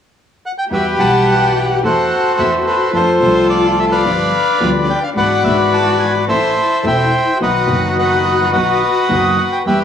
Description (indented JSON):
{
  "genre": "tango",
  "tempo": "107 BPM",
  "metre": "4/4",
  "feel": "rubato",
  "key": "unclear",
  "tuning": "A4 = 439 Hz",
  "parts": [
    { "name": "bandoneon", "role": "melody", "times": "0.5-9.8 s", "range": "F#4 to A5", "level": "-14 LUFS", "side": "equal", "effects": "tape echo" },
    { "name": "warm cello", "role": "second line", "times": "0.7-9.8 s", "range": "D4 to G4", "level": "-20 LUFS", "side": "left 6 dB", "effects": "cassette tape" },
    { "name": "dark concert grand piano", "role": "accompaniment", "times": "0.7-9.8 s", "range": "E1 to F#5", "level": "-19 LUFS", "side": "equal", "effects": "cassette tape" },
    { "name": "clear studio string section", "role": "stabs", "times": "0.7-9.8 s", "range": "E3 to F#5", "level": "-24 LUFS", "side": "equal", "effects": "cassette tape" }
  ],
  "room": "moderate spring reverb, RT60 1.6 s, studio ambience",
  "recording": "home recording on cassette, small room ambience",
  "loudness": "-12 LUFS",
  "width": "side -8 dB against mid",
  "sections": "0.7-9.8 A section",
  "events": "none",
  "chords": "0.0 N.C.; 0.7 Emadd9; 1.8 Am/E; 3.0 F6; 4.1 G7; 5.2 E7/G#; 6.3 Am; 7.4 B"
}